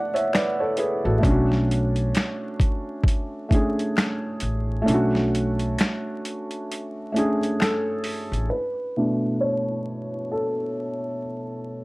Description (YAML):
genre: lo-fi hip hop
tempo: 66 BPM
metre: 4/4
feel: swing 59% on 16ths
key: B dorian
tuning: A4 = 440 Hz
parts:
  - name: felt-muted upright piano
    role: accompaniment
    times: 0.0-11.8 s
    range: B2 to F#5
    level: -24 LUFS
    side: equal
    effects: cassette tape, low-pass filter, plate reverb
  - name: boom bap sampler-style drum kit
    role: drums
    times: 0.2-8.5 s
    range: finger snaps, hi-hat, kick drum, snare drum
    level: -23 LUFS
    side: equal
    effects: overdrive
  - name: finger snaps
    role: percussion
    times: 0.3-7.8 s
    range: none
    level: -37 LUFS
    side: left 3 dB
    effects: none
  - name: upright bass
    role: bass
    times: 1.1-8.5 s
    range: A1 to B1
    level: -24 LUFS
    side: equal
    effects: none
room: moderate studio reverb, RT60 0.5 s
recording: vinyl crackle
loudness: -22 LUFS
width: side -23 dB against mid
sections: 0.0-8.5 A section; 8.5-11.8 B section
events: kick muted 4.9-8.5; felt piano solo 8.5-11.8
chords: 0.0 E9sus4; 1.2 Bm9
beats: 0.32 | 1.23 2.14 3.05 3.96 | 4.87 5.78 6.69 7.60 | 8.51 9.41 10.32 11.23